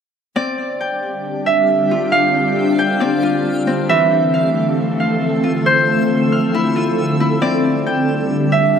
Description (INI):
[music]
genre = hip hop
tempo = 136 BPM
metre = 4/4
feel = half-time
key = unclear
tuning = A4 = 441 Hz
[part]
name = concert harp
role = melody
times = 0.4-8.8 s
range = C5 to F5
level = -18 LUFS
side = right 4 dB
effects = digital delay
[part]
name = ethereal airy pad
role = sustained chords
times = 1.1-8.8 s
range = D3 to A4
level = -18 LUFS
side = left 1 dB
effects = ensemble chorus, built-in reverb
[part]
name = Celtic harp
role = arpeggios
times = 0.4-8.8 s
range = E3 to F6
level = -22 LUFS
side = left 3 dB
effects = digital delay
[part]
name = backwards swelling texture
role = texture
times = 1.0-8.8 s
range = F3 to E6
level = -26 LUFS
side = left 1 dB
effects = built-in reverb
[sound]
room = moderate huge ambient reverb, RT60 4.0 s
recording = none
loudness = -14 LUFS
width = side -7 dB against mid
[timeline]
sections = 0.4-8.8 A section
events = none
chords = 0.4 G7sus4; 3.9 Fmaj7; 7.4 G7sus4